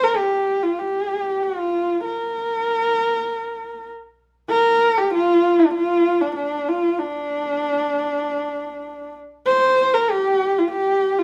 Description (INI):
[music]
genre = mongolian traditional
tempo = 97 BPM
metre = 4/4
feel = straight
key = Bb gong mode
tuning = A4 = 437 Hz
[part]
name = rich horsehead fiddle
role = melody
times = 0.0-11.2 s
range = D4 to C5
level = -20 LUFS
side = equal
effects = none
[sound]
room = moderate studio reverb, RT60 0.9 s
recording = band playing live in one room, faint mains hum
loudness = -20 LUFS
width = mono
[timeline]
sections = 0.0-4.5 A section; 4.5-11.2 A section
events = none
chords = none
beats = 0.20 0.81 1.43 | 2.05 2.67 3.29 3.91 | 4.53 5.15 5.76 6.38 | 7.00 7.61 8.23 8.85 | 9.46 10.08 10.69